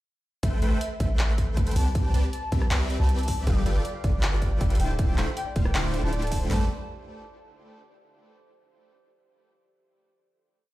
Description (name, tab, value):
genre	future bass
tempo	158 BPM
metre	4/4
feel	half-time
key	A minor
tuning	A4 = 436 Hz
part	warm velvety synth lead	melody	0.4-6.7 s	D5 to A5	-37 LUFS	left 1 dB	chorus, sidechain pumping, dub echo
part	supersaw chords	riff	0.4-6.7 s	D3 to B5	-32 LUFS	equal	sidechain pumping, tape echo
part	long sustained 808-style bass	bass	0.4-6.7 s	D1 to C2	-25 LUFS	equal	sidechain pumping
part	big-room dance drum kit	drums	0.4-6.6 s	hi-hat, kick drum, snare drum, toms	-26 LUFS	equal	none
part	big-room dance drum kit	drums	0.4-6.4 s	handclaps, hi-hat, rim click	-33 LUFS	equal	none
part	concert harp	arpeggios	3.6-6.7 s	G4 to F5	-41 LUFS	right 1 dB	sidechain pumping, tape echo
room	little or no reverb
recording	played on a big sound system in a bare room, large studio reverb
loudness	-23 LUFS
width	side -16 dB against mid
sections	0.4-6.5 drop; 6.5-8.0 final chord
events	drop 0.4-6.5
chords	0.4 Am7; 2.0 Cmaj7; 3.5 Dm11; 6.5 Am7